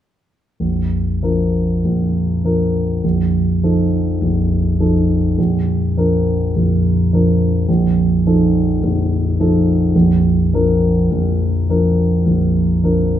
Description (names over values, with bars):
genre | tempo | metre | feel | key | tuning
classical, romantic nocturne for solo piano | 48-54 BPM | 4/4 | rubato | Bb major | A4 = 438 Hz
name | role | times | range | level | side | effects
warm concert grand piano | solo | 0.6-13.2 s | Bb0 to Bb4 | -13 LUFS | equal | none
room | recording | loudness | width
wet large studio reverb, RT60 1.1 s | heard from further back in the room | -14 LUFS | side -10 dB against mid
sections
0.6-13.2 A section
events
none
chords
0.6 Bb; 3.0 F7/Bb; 5.4 Bb; 7.7 F7/Bb; 9.9 Bb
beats
| 0.59 1.83 3.03 4.21 | 5.38 6.55 7.68 8.82 | 9.94 11.10 12.24